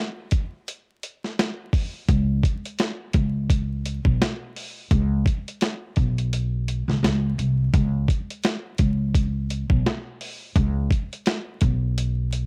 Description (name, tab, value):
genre	hip hop, boom-bap hip-hop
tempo	85 BPM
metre	4/4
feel	swing 58% on 16ths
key	unclear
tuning	A4 = 439 Hz
part	boom bap sampler-style drum kit	drums	0.3-12.5 s	hi-hat, kick drum, snare drum	-25 LUFS	equal	cassette tape
part	upright bass	bass	2.1-12.5 s	B1 to C#2	-25 LUFS	equal	none
room	little or no reverb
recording	home recording on cassette, vinyl crackle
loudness	-24 LUFS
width	mono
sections	0.0-12.5 A section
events	break 0.0-2.1; kick muted 6.3-7.7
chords	none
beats	0.68 1.38 | 2.09 2.79 3.50 4.20 | 4.91 5.62 6.32 7.03 | 7.73 8.44 9.15 9.85 | 10.56 11.26 11.97